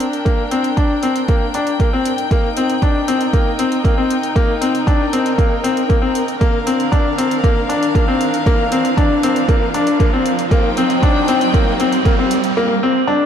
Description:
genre	piano and strings electronica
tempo	117 BPM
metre	4/4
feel	straight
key	unclear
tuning	A4 = 439 Hz
part	dark chamber string section	sustained chords	0.0-12.6 s	D4 to G5	-22 LUFS	left 2 dB	sidechain pumping
part	bright upright piano	riff	0.0-13.2 s	Bb3 to D4	-16 LUFS	left 1 dB	tape echo
part	warm sub bass	bass	0.0-12.5 s	none	barely audible	none	none
part	electronic hi-hat	drums	0.0-12.5 s	none	-32 LUFS	left 1 dB	studio reverb
part	riser	sound effects	0.6-12.6 s	none	-26 LUFS	right 3 dB	none
part	electronic kick drum	drums	0.3-12.2 s	none	-15 LUFS	right 1 dB	studio reverb
room	moderate scoring stage reverb, RT60 2.1 s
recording	dark, warm production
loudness	-13 LUFS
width	side -8 dB against mid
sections	0.0-13.3 A section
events	build-up 0.0-13.3; riser 0.6-12.6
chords	0.0 Gm; 2.3 Eb; 6.4 Bb; 10.5 Cm

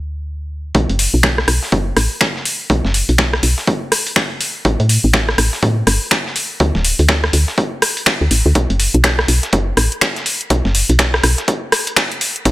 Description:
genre	deep house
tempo	123 BPM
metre	4/4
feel	swing 61% on 16ths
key	B minor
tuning	A4 = 442 Hz
part	woody FM bass	bass	0.0-12.5 s	D1 to A2	-15 LUFS	equal	tube saturation, sidechain pumping
part	dusty soul sampler-style drum kit	drums	0.7-12.5 s	hi-hat, snare drum	-24 LUFS	equal	sidechain pumping on hats, high-pass filter on hats, high-pass filter on snare
part	electronic kick drum	drums	0.7-12.5 s	none	-18 LUFS	equal	high-pass filter on kick, high-pass filter on room
part	deep house drum kit	drums	1.0-12.5 s	finger snaps, hi-hat, rim click	-16 LUFS	equal	overdrive, high-pass filter on hats, low-pass filter on hats, high-pass filter on snare, low-pass filter on snare
room	little or no reverb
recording	dry, gritty hardware recording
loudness	-13 LUFS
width	side -17 dB against mid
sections	0.7-12.5 A section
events	build-up 0.7-12.5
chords	none

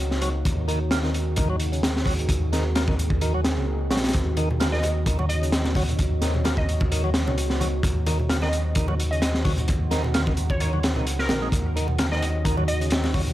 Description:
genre	breakbeat, breaks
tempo	130 BPM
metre	4/4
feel	swing 55% on 16ths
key	Eb dorian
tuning	A4 = 440 Hz
part	deep dark ambient pad	sustained chords	0.0-13.3 s	Bb3 to Db5	-32 LUFS	right 1 dB	chorus, built-in reverb, sidechain pumping
part	picked electric bass	bass	0.0-13.3 s	Bb1 to Eb2	-25 LUFS	equal	none
part	crunchy breakbeat drum kit	drums	0.1-13.3 s	hi-hat, kick drum, snare drum	-25 LUFS	equal	none
part	overdriven tonewheel organ	riff	0.2-13.2 s	Db3 to Bb3	-31 LUFS	equal	slow rotary speaker, tape echo
part	congas	percussion	4.4-13.3 s	none	-32 LUFS	left 1 dB	none
part	glassy wavetable pluck	melody	4.7-12.8 s	Bb4 to Eb5	-31 LUFS	equal	chorus, telephone sound, tape echo
room	small room ambience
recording	vinyl crackle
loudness	-21 LUFS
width	side -14 dB against mid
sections	0.0-13.3 A section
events	none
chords	0.0 Ebm7

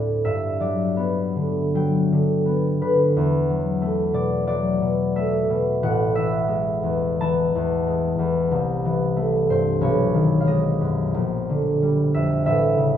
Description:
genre	classical, solo harp piece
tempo	73-95 BPM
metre	4/4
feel	rubato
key	unclear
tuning	A4 = 440 Hz
part	concert harp	solo	0.0-13.0 s	A1 to A5	-19 LUFS	left 1 dB	none
room	light reverb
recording	close, detailed microphones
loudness	-19 LUFS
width	side -9 dB against mid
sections	0.0-13.0 A section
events	none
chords	0.3 Gmaj7; 3.1 E9sus4; 5.8 A5; 8.5 C6; 9.8 B69; 11.1 A#6; 12.5 A

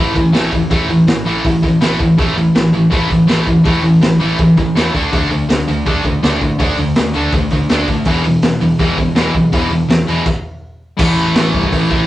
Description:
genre	punk rock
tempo	163 BPM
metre	4/4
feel	straight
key	unclear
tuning	A4 = 440 Hz
part	distorted electric guitar	riff	0.0-12.1 s	E2 to D4	-16 LUFS	left 2 dB	overdrive
part	distorted electric guitar	riff	0.0-12.1 s	E2 to D4	-16 LUFS	right 2 dB	overdrive
part	overdriven picked electric bass	bass	0.0-12.1 s	E1 to A2	-22 LUFS	equal	none
part	raw garage drum kit	drums	0.2-12.0 s	crash cymbal, hi-hat, kick drum, snare drum	-17 LUFS	equal	vintage 12-bit sampler grit
room	wet studio reverb, RT60 0.6 s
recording	rough rehearsal-room recording, cassette tape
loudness	-11 LUFS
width	side -15 dB against mid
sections	0.0-11.0 A section; 11.0-12.1 B section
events	stop 10.3-11.0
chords	0.0 A5; 4.9 D5; 8.1 E5; 11.0 A5

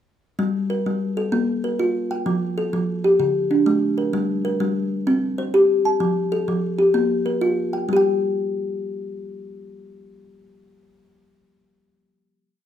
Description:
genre	southern african traditional, mbira-style interlocking cycle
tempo	128 BPM (dotted quarters)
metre	12/8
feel	straight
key	G equiheptatonic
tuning	A4 = 440 Hz
part	kalimba	solo	0.4-11.1 s	D3 to A5-29c	-19 LUFS	equal	none
room	moderate large studio reverb, RT60 0.8 s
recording	band playing live in one room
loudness	-19 LUFS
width	side -10 dB against mid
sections	0.4-7.9 A section; 7.9-11.7 final note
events	none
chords	0.4 Gm; 1.3 Bb5; 2.3 F; 3.2 D5; 4.1 Gm; 5.1 C5; 6.0 F; 6.9 Bb5; 7.9 N.C.

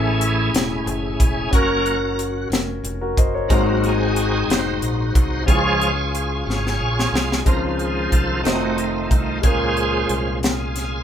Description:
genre	slow gospel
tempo	61 BPM (dotted quarters)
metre	6/8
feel	straight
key	Db major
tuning	A4 = 439 Hz
part	warm concert grand piano	accompaniment	0.0-11.0 s	Ab2 to Eb5	-24 LUFS	left 3 dB	none
part	bright tonewheel organ	sustained chords	0.0-11.0 s	Eb3 to Db5	-22 LUFS	right 2 dB	slow rotary speaker, chorus vibrato
part	fingered electric bass	bass	0.0-11.0 s	E1 to Db2	-26 LUFS	equal	none
part	crisp fusion drum kit	drums	0.2-10.9 s	hi-hat, kick drum, snare drum	-20 LUFS	equal	none
room	moderate small room reverb, RT60 0.5 s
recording	band playing live in one room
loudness	-17 LUFS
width	side -9 dB against mid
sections	0.0-7.5 A section; 7.5-11.0 B section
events	tonewheel organ solo 0.0-7.5, 7.5-11.0; drum fill 6.5-7.5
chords	0.0 A; 1.5 Gb; 3.5 Ab7; 5.5 Db; 7.5 Dbmaj7; 8.4 F7; 9.4 Bbm7

